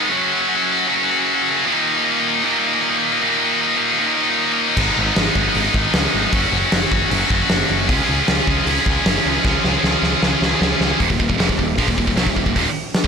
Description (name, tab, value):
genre	heavy metal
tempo	154 BPM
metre	4/4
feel	straight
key	Eb minor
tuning	A4 = 438 Hz
part	heavy high-gain guitar	riff	0.0-13.1 s	Eb2 to Db4	-20 LUFS	right 13 dB	distortion
part	scooped high-gain guitar	riff	0.0-13.1 s	Eb2 to Ab4	-20 LUFS	left 14 dB	distortion
part	growling picked electric bass	bass	4.8-13.1 s	Eb1 to Db2	-23 LUFS	equal	overdrive
part	big rock drum kit	drums	4.8-13.1 s	crash cymbal, hi-hat, kick drum, snare drum	-19 LUFS	equal	none
room	studio reverb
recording	blown-out, overdriven recording, overdrive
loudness	-15 LUFS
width	side -6 dB against mid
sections	0.0-11.0 A section; 11.0-13.1 B section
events	drum fill 9.4-11.0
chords	0.1 Gb5; 1.7 Eb5; 4.8 Abm; 6.3 Gb5; 7.9 Db; 11.0 Eb5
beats	| 0.10 0.49 0.88 1.27 | 1.66 2.05 2.44 2.83 | 3.22 3.60 4.00 4.38 | 4.77 5.16 5.55 5.94 | 6.33 6.72 7.11 7.50 | 7.89 8.28 8.67 9.05 | 9.45 9.83 10.22 10.61 | 11.00 11.39 11.78 12.17 | 12.56 12.95